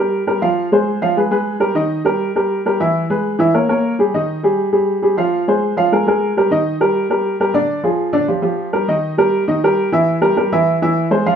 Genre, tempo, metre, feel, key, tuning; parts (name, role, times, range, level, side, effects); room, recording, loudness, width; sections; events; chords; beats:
jazz; 202 BPM; 4/4; straight; Eb major; A4 = 440 Hz
warm upright piano; solo; 0.0-11.4 s; D3 to F5; -14 LUFS; equal
moderate large studio reverb, RT60 0.9 s; band playing live in one room; -14 LUFS; side -7 dB against mid
0.0-8.9 A section; 8.9-11.4 B section
0.0 Ebadd9 (rootless); 0.6 Fm; 1.2 Abmmaj7; 1.8 Eb; 2.9 E; 3.5 Gdim; 4.1 Ab5; 5.3 Fm; 5.9 Absus2; 6.5 Ebmaj7; 7.7 Ddim; 8.3 Fsus24; 8.9 Eb; 10.1 C7b13 (rootless)
0.27 | 0.57 0.87 1.16 1.46 | 1.76 2.06 2.35 2.65 | 2.95 3.24 3.54 3.84 | 4.13 4.43 4.73 5.03 | 5.32 5.62 5.92 6.21 | 6.51 6.81 7.10 7.40 | 7.70 7.99 8.29 8.59 | 8.88 9.18 9.48 9.77 | 10.07 10.36 10.66 10.96 | 11.25